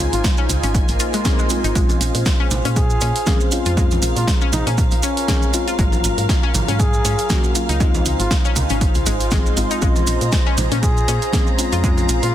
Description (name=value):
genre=deep house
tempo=119 BPM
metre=4/4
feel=swing 56% on 16ths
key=Bb minor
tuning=A4 = 440 Hz
part: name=warm analog pad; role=sustained chords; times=0.0-12.3 s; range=Gb3 to C5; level=-29 LUFS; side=right 2 dB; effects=wide subtle chorus, sidechain pumping
part: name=deep mellow chord stab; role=stabs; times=0.0-12.3 s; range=Gb3 to Ab4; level=-26 LUFS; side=left 2 dB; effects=chorus, sidechain pumping, digital delay
part: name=woody FM bass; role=bass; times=0.0-12.3 s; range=Ab1 to Bb2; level=-22 LUFS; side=equal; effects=sidechain pumping
part: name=soft string machine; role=texture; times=0.0-12.3 s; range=F5 to Bb5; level=-32 LUFS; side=equal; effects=ensemble chorus, sidechain pumping
part: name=warbly tape-like pad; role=texture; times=0.0-12.3 s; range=Gb3 to C6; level=-30 LUFS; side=right 1 dB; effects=chorus, built-in reverb, sidechain pumping
part: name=trumpet with bucket mute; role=melody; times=0.1-12.3 s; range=Db4 to Ab4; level=-27 LUFS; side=equal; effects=digital delay
part: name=punchy analog drum machine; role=drums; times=0.1-12.3 s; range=hi-hat, snare drum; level=-26 LUFS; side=right 1 dB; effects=none
part: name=maracas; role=percussion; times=0.1-12.3 s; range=none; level=-28 LUFS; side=right 5 dB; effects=none
part: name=electronic kick drum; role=drums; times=0.2-11.9 s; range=none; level=-19 LUFS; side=equal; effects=none
part: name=analog pluck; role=arpeggios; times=0.4-11.9 s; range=Ab3 to F4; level=-28 LUFS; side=left 6 dB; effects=chorus, vintage 12-bit sampler grit, sidechain pumping, digital delay
part: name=swell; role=sound effects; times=0.9-1.8 s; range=none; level=-31 LUFS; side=right 1 dB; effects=none
part: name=congas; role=percussion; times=1.9-12.1 s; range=none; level=-29 LUFS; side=right 2 dB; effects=none
room=light reverb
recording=dense, heavily limited modern master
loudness=-15 LUFS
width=side -12 dB against mid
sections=0.0-12.3 A section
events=swell 0.9-1.8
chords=0.0 Dbmaj9; 1.8 Bbm7; 5.8 Ab13sus4; 7.8 Dbmaj9; 9.8 Bbm7